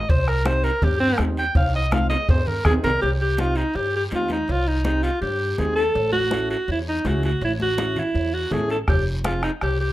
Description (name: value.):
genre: latin, cumbia.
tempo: 164 BPM.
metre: 4/4.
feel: straight.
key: unclear.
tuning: A4 = 441 Hz.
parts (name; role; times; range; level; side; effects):
clear alto saxophone; melody; 0.0-9.9 s; C4 to G5; -22 LUFS; equal; slapback echo.
upright bass; bass; 0.0-9.9 s; F1 to G2; -25 LUFS; equal; none.
bombo; percussion; 0.1-2.8, 8.9-9.8 s; none; -21 LUFS; equal; none.
congas; percussion; 0.1-9.8 s; none; -30 LUFS; left 2 dB; none.
cowbell and timbales; percussion; 0.1-9.8 s; none; -33 LUFS; right 4 dB; none.
guiro; percussion; 0.1-9.9 s; none; -39 LUFS; left 1 dB; none.
combo organ; accompaniment; 0.5-9.5 s; C4 to A4; -31 LUFS; right 1 dB; none.
room: moderate small room reverb, RT60 0.5 s.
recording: rough home demo mix.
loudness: -19 LUFS.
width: side -15 dB against mid.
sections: 0.0-3.0 A section; 3.0-9.9 B section.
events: alto saxophone solo 0.0-3.0; drum fill 1.6-3.0.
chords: 0.1 Cm; 6.0 A; 8.9 Fm.